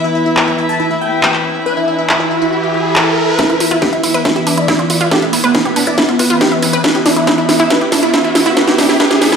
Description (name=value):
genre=psychedelic trance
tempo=139 BPM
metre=4/4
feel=straight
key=unclear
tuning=A4 = 437 Hz
part: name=supersaw stab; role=melody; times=0.0-9.4 s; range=B3 to A5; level=-18 LUFS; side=equal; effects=phaser, sidechain pumping, dub echo
part: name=evolving wavetable pad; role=sustained chords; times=0.0-9.4 s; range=E3 to E4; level=-20 LUFS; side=left 1 dB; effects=phaser, built-in reverb, sidechain pumping
part: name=riser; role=sound effects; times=0.9-9.4 s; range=none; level=-20 LUFS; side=right 2 dB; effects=none
part: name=rich chamber string section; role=texture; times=0.0-9.4 s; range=E4 to E5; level=-21 LUFS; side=left 2 dB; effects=sidechain pumping
part: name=drum and bass drum kit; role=drums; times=0.4-9.4 s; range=handclaps, hi-hat, snare drum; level=-14 LUFS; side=right 1 dB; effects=overdrive
part: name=wide unison pluck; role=riff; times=3.4-9.4 s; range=D4 to E5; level=-17 LUFS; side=moving between left 4 dB and right 4 dB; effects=auto-pan, sidechain pumping, dub echo
part: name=electronic kick drum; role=drums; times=3.4-9.1 s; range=none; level=-18 LUFS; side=equal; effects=overdrive, high-pass filter on kick
room=moderate digital room reverb, RT60 1.1 s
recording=played on a big sound system in a bare room, stone room reverb, high-pass filter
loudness=-10 LUFS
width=side -6 dB against mid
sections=0.0-3.4 A section; 3.4-9.4 B section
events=riser 0.9-3.4, 3.4-9.4; build-up 3.4-9.4; drum fill 3.4-9.4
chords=0.0 E5